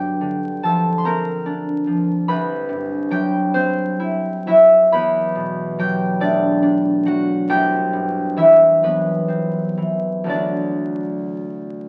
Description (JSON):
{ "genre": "classical, solo harp piece", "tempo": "39-49 BPM (dotted quarters)", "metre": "6/8", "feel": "rubato", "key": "unclear", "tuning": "A4 = 437 Hz", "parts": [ { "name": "concert harp", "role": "solo", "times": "0.0-11.9 s", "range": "C2 to C6", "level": "-18 LUFS", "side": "equal", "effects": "none" } ], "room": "moderate studio reverb, RT60 0.7 s", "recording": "very old 78 rpm record, vinyl crackle", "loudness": "-18 LUFS", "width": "mono", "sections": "0.0-11.9 A section", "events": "none", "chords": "0.0 Bb69/G; 2.3 Cmaj7#11; 4.9 Em11; 7.5 Cmaj7#11; 10.3 Dadd9", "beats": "1.05 | 2.28 3.55 | 4.92 6.21 | 7.49 8.83 | 10.28 11.81" }